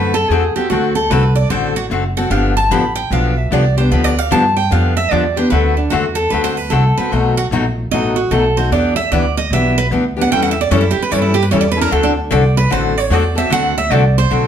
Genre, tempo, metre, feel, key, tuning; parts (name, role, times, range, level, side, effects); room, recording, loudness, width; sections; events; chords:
acoustic string swing (jazz manouche); 150 BPM; 4/4; swing 64% on 8ths; D mixolydian; A4 = 440 Hz
picked steel-string acoustic guitar; second line; 0.0-14.5 s; D4 to B5; -17 LUFS; right 4 dB
picked steel-string acoustic guitar; accompaniment; 0.0-14.5 s; B2 to A4; -17 LUFS; left 4 dB
upright bass; bass; 0.0-14.5 s; F#1 to G2; -17 LUFS; equal
wet studio reverb, RT60 0.8 s; heard from further back in the room; -12 LUFS; side -9 dB against mid
0.0-14.5 A section
steel-string acoustic guitar solo 0.0-14.5
0.0 D7; 2.3 G7; 5.5 D7; 7.1 B7; 8.7 Em7; 10.3 A7; 11.9 D7